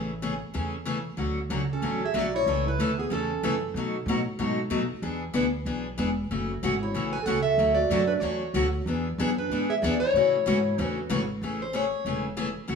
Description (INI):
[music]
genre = acoustic string swing (jazz manouche)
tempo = 188 BPM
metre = 4/4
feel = swing 60% on 8ths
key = A major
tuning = A4 = 440 Hz
[part]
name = picked steel-string acoustic guitar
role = accompaniment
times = 0.0-12.8 s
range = B2 to A4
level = -28 LUFS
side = left 2 dB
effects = none
[part]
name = upright bass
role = bass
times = 0.0-12.8 s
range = E1 to B2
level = -31 LUFS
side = right 1 dB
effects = none
[part]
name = picked plugged-in steel-string acoustic guitar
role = melody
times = 1.7-3.6, 6.8-12.2 s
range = G#4 to G#5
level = -27 LUFS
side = left 1 dB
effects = none
[part]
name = growling clarinet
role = second line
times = 1.7-3.6, 6.8-11.2 s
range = B3 to B4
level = -33 LUFS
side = right 6 dB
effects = none
[sound]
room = wet stone room reverb, RT60 1.2 s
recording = band playing live in one room, small room ambience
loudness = -24 LUFS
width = side -6 dB against mid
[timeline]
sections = 0.0-1.2 A section; 1.2-11.4 B section; 11.4-12.8 C section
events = steel-string acoustic guitar solo 11.4-12.8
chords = 0.0 Amaj7; 1.2 Dmaj7; 2.5 A/C#; 3.7 B7; 5.0 E7; 6.3 F#m7; 7.6 Dmaj7; 8.9 E7; 10.1 A6; 11.4 Amaj7